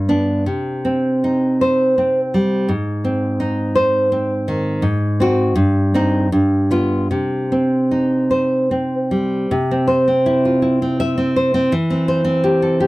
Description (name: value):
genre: romantic piece for solo classical guitar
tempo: 73-85 BPM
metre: 3/4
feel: rubato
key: C minor, C major from 9.5 s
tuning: A4 = 438 Hz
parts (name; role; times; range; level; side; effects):
- nylon-string guitar; solo; 0.0-12.9 s; G2 to E5; -15 LUFS; equal; none
room: light reverb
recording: dry, close 1970s-style studio recording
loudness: -15 LUFS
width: side -19 dB against mid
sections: 0.0-9.5 A section; 9.5-12.9 B section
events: none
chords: 0.5 Cm; 2.7 Ab; 4.8 Ab7; 5.6 Cm/G; 6.3 G7; 7.1 Cm; 9.5 C; 11.7 C/E